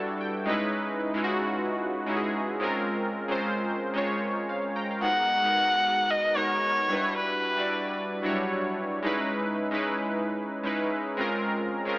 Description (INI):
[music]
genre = amapiano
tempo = 112 BPM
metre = 4/4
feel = swing 55% on 16ths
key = unclear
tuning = A4 = 441 Hz
[part]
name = warm analog keys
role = accompaniment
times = 0.0-12.0 s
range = F#3 to A#5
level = -27 LUFS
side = equal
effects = chorus
[part]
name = dark erhu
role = melody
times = 5.0-7.9 s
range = B4 to F#5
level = -25 LUFS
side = equal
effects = tape echo
[sound]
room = moderate echo chamber reverb, RT60 2.7 s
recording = AM radio sound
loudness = -25 LUFS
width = side -21 dB against mid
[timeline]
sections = 0.0-12.0 A section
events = synth keys fill 0.0-0.7, 4.2-5.0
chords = 0.5 C#m9; 2.6 A#m9; 5.0 G#m9; 6.9 Em9; 9.0 C#m9; 11.2 A#m9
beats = 0.20 | 0.74 1.27 1.81 2.34 | 2.88 3.42 3.95 4.49 | 5.02 5.56 6.09 6.63 | 7.17 7.70 8.24 8.77 | 9.31 9.84 10.38 10.91 | 11.45